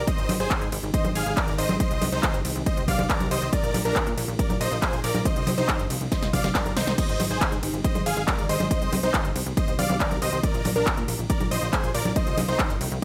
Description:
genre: uplifting trance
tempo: 139 BPM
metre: 4/4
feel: straight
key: C minor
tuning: A4 = 440 Hz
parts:
  - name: shimmering ambient pad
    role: sustained chords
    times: 0.0-13.0 s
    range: Bb2 to Ab4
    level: -39 LUFS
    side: equal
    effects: none
  - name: plucky analog bass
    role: bass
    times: 0.0-13.0 s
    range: G1 to Bb2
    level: -32 LUFS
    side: equal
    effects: sidechain pumping
  - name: big supersaw lead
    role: melody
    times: 0.1-12.7 s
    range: D4 to F5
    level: -32 LUFS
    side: equal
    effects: sidechain pumping, digital delay
  - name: plucky unison lead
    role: second line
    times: 0.1-12.7 s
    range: Bb4 to F5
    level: -36 LUFS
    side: equal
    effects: sidechain pumping, digital delay
  - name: big-room dance drum kit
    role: drums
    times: 0.1-13.0 s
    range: congas, crash cymbal, handclaps, hi-hat, ride cymbal, snare drum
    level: -30 LUFS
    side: equal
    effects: overdrive
  - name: electronic kick drum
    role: drums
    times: 0.1-12.7 s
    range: none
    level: -28 LUFS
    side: equal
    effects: overdrive
room: light reverb, digital ambience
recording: none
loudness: -24 LUFS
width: mono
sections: 0.0-7.0 A section; 7.0-13.0 A section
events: drop 0.0-7.0, 7.0-13.0; drum fill 6.1-7.0; band accent 6.9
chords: 0.1 Ab; 1.8 Cm; 3.5 Bb; 5.3 Cm; 7.0 Ab; 8.7 Cm; 10.4 Bb; 12.2 Cm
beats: | 0.07 0.51 0.94 1.37 | 1.80 2.23 2.66 3.10 | 3.53 3.96 4.39 4.82 | 5.25 5.69 6.12 6.55 | 6.98 7.41 7.84 8.28 | 8.71 9.14 9.57 10.00 | 10.43 10.87 11.30 11.73 | 12.16 12.59 13.02

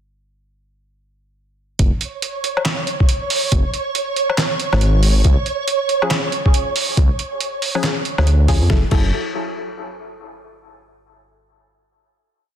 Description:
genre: deep dubstep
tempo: 139 BPM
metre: 4/4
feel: swing 61% on 16ths, half-time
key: F# minor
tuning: A4 = 440 Hz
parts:
  - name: dark detuned saw bass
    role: bass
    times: 1.8-9.1 s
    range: F#1 to E#2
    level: -15 LUFS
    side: equal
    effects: none
  - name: electronic kick drum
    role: drums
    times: 1.8-9.0 s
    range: none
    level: -16 LUFS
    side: equal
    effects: studio reverb
  - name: trip hop sampler-style drum kit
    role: drums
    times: 1.8-9.0 s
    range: crash cymbal, handclaps, hi-hat, snare drum, woodblock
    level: -22 LUFS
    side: right 1 dB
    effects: studio reverb
  - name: flickering grainy texture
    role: texture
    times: 2.2-8.7 s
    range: C#5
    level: -23 LUFS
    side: right 4 dB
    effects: built-in reverb
  - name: filtered dub chord stab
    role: stabs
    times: 6.0-9.1 s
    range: E#3 to A4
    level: -26 LUFS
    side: left 3 dB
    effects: chorus, dub echo
room: little or no reverb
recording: dense, heavily limited modern master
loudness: -16 LUFS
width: side -10 dB against mid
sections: 1.8-8.7 drop; 8.7-10.4 final chord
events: drop 1.8-8.7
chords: 1.8 N.C.; 5.2 C#; 8.7 F#m7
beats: | 1.79 2.22 2.66 3.09 | 3.52 3.95 4.38 4.81 | 5.25 5.68 6.11 6.54 | 6.97 7.40 7.83 8.27 | 8.70

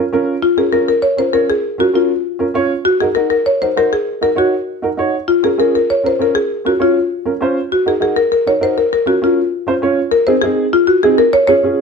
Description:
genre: latin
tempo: 198 BPM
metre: 4/4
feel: straight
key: Bb minor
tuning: A4 = 440 Hz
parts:
  - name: dark upright piano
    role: accompaniment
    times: 0.0-11.8 s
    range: C4 to Db5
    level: -17 LUFS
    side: right 4 dB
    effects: none
  - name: buzzing marimba with medium mallets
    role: melody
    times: 0.4-11.8 s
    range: F4 to Db5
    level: -13 LUFS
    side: left 3 dB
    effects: none
room: moderate studio reverb, RT60 0.9 s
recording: dark, warm production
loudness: -12 LUFS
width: side -5 dB against mid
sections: 0.4-10.1 A section; 10.1-11.8 B section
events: none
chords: 0.4 Bbm; 2.9 Ebm; 5.3 Bbm; 7.7 Ebm; 8.9 Bbm; 10.1 Ab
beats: 0.12 | 0.42 0.72 1.03 1.33 | 1.64 1.94 2.24 2.55 | 2.85 3.16 3.46 3.76 | 4.07 4.37 4.67 4.98 | 5.28 5.58 5.89 6.19 | 6.50 6.80 7.10 7.41 | 7.71 8.01 8.31 8.62 | 8.92 9.22 9.52 9.83 | 10.13 10.43 10.73 11.03 | 11.33 11.63

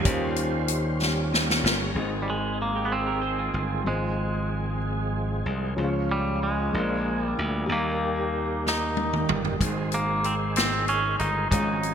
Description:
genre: slow gospel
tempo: 63 BPM (dotted quarters)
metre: 6/8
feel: straight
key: Ab major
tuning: A4 = 440 Hz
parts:
  - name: warm grand piano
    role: accompaniment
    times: 0.0-11.9 s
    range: Ab2 to Db5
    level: -32 LUFS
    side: left 2 dB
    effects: none
  - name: overdriven tonewheel organ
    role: sustained chords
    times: 0.0-11.9 s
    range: Eb3 to Bb5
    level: -33 LUFS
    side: right 3 dB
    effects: slow rotary speaker, chorus vibrato
  - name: glassy slap bass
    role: bass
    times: 0.0-11.9 s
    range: G1 to Eb2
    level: -29 LUFS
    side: equal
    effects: none
  - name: mellow French horn section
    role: sustained chords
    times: 0.1-1.9 s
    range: Db4 to C5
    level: -38 LUFS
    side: left 2 dB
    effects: none
  - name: swinging big-band drum kit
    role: drums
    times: 0.1-1.8, 8.7-11.9 s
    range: hi-hat, kick drum, snare drum, toms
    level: -26 LUFS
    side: equal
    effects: gated reverb
  - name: twangy electric guitar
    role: melody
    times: 2.2-11.9 s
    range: G3 to Eb4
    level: -28 LUFS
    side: right 1 dB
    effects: spring reverb, ping-pong delay
  - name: clean electric guitar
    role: second line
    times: 2.8-3.8 s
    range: Eb4 to C5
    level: -34 LUFS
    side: right 9 dB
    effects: analog chorus
room: moderate lush hall reverb, RT60 1.8 s, small room ambience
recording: bright 1980s-style digital production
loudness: -23 LUFS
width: side -8 dB against mid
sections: 0.1-2.0 A section; 2.0-11.9 B section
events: drum fill 1.0-2.0, 8.6-9.6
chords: 0.1 Eb13; 2.0 Ab; 3.9 Fm/Ab; 5.8 Db; 6.7 Bb7; 7.7 Eb; 9.6 Ab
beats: | 0.06 1.01 | 1.96 2.92 | 3.87 4.83 | 5.78 6.74 | 7.69 8.65 | 9.60 10.56 | 11.51

